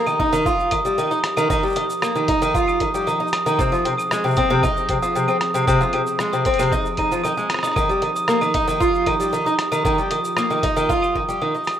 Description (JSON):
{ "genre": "folktronica", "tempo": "115 BPM", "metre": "4/4", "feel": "straight", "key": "Eb major", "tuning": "A4 = 439 Hz", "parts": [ { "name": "warbly tape-like pad", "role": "sustained chords", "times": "0.0-11.8 s", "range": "F3 to Ab4", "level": "-31 LUFS", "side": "equal", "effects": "chorus, built-in reverb" }, { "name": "fingerpicked twelve-string acoustic guitar", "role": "arpeggios", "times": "0.0-11.6 s", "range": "C3 to F4", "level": "-20 LUFS", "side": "equal", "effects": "digital delay" }, { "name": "glockenspiel with soft plastic mallets", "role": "second line", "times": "0.1-11.7 s", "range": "Eb6 to Eb7", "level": "-23 LUFS", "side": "right 1 dB", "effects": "digital delay" }, { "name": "lo-fi sampler-style drum kit", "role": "drums", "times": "0.1-11.8 s", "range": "claves, hi-hat, rim click, shaker", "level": "-28 LUFS", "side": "equal", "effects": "studio reverb" }, { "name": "electronic kick drum", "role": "drums", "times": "0.2-11.3 s", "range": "none", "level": "-26 LUFS", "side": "equal", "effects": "studio reverb" } ], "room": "moderate plate reverb, RT60 1.6 s", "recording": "rough home demo mix", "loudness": "-17 LUFS", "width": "side -10 dB against mid", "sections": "0.0-11.8 A section", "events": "fade-out 10.5-11.8", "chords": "0.0 Ebadd9; 3.6 Ab6; 7.8 Ebadd9" }